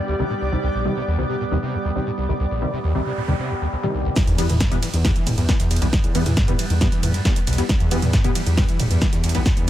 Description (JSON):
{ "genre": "driving peak-time techno", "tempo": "136 BPM", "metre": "4/4", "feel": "straight", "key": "E minor", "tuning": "A4 = 440 Hz", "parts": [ { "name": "overtone-sweeping drone", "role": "drone", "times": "0.0-9.7 s", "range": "G3 to B3", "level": "-30 LUFS", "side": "right 1 dB", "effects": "chorus, built-in reverb, sidechain pumping" }, { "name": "granular cloud pad", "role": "texture", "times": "0.0-4.2 s", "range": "G4 to D5", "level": "-30 LUFS", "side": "equal", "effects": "built-in reverb, sidechain pumping" }, { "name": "overdriven acid bass", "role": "riff", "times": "0.1-9.7 s", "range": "E1 to E3", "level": "-25 LUFS", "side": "equal", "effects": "distortion, ensemble chorus, cassette tape, sidechain pumping, dub echo" }, { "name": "rave stab", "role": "stabs", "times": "0.2-9.7 s", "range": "C3 to B3", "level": "-28 LUFS", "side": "left 1 dB", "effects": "chorus, built-in reverb, sidechain pumping, dub echo" }, { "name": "noise sweep and impact", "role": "sound effects", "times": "2.8-5.9 s", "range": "none", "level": "-34 LUFS", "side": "right 1 dB", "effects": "none" }, { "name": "dusty soul sampler-style drum kit", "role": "drums", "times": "4.2-9.7 s", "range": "hi-hat, shaker, snare drum", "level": "-37 LUFS", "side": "left 2 dB", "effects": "none" }, { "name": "electronic kick drum", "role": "drums", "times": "4.2-9.5 s", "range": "none", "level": "-20 LUFS", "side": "equal", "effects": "none" }, { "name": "techno drum kit", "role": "drums", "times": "4.2-9.7 s", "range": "hi-hat, ride cymbal, snare drum, toms", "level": "-25 LUFS", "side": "right 1 dB", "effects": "analog delay" }, { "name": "detuned saw bass", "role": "bass", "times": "4.3-9.7 s", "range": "E1 to E2", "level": "-21 LUFS", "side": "equal", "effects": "sidechain pumping" } ], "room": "little or no reverb", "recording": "echo-heavy mix", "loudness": "-18 LUFS", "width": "side -12 dB against mid", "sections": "0.0-4.2 A section; 4.2-9.7 B section", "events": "filter sweep on synth stab 0.0-4.2; noise sweep 2.8-4.2; drop 4.2-9.7; impact 4.2-5.9", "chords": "0.0 Cm; 4.2 Em", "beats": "0.19 | 0.63 1.07 1.52 1.96 | 2.40 2.84 3.28 3.72 | 4.16 4.61 5.05 5.49 | 5.93 6.37 6.81 7.25 | 7.69 8.13 8.57 9.02 | 9.46" }